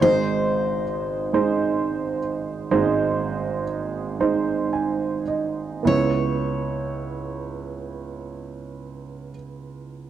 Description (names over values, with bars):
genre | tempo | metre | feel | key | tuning
acoustic folk-pop ballad | 34-46 BPM (dotted quarters) | 6/8 | straight | C# minor | A4 = 438 Hz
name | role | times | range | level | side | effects
picked steel-string acoustic guitar | melody | 0.0-9.3 s | B#4 to C#5 | -26 LUFS | left 4 dB | none
warm baby grand piano | accompaniment | 0.0-10.1 s | G#1 to G#5 | -23 LUFS | right 5 dB | none
room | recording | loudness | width
light reverb | dry, close 1970s-style studio recording | -21 LUFS | side -10 dB against mid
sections
0.0-5.9 A section; 5.9-9.4 B section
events
slowing down 0.0-5.9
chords
0.0 G#; 5.9 C#m7